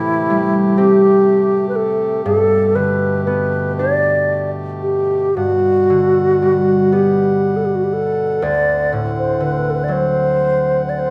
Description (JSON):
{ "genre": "celtic folk, Celtic slow air", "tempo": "37-43 BPM (dotted quarters)", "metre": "6/8", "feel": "rubato", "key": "unclear", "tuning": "A4 = 440 Hz", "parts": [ { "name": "mellow hollow wooden flute", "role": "melody", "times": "0.0-11.1 s", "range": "E4 to D5", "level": "-17 LUFS", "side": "equal", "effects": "none" }, { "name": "concert harp", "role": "accompaniment", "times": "0.0-11.1 s", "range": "D2 to D4", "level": "-22 LUFS", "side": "equal", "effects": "none" }, { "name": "mellow accordion", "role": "sustained chords", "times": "0.0-11.1 s", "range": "B2 to F#5", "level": "-27 LUFS", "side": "equal", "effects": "none" } ], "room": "light reverb", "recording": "none", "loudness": "-16 LUFS", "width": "mono", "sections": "0.0-11.1 A section", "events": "none", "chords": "0.0 Am7; 2.2 Gadd9; 5.3 Gmaj7; 8.4 D7", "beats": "0.76 | 2.24 3.77 | 5.35 6.91 | 8.42 9.88" }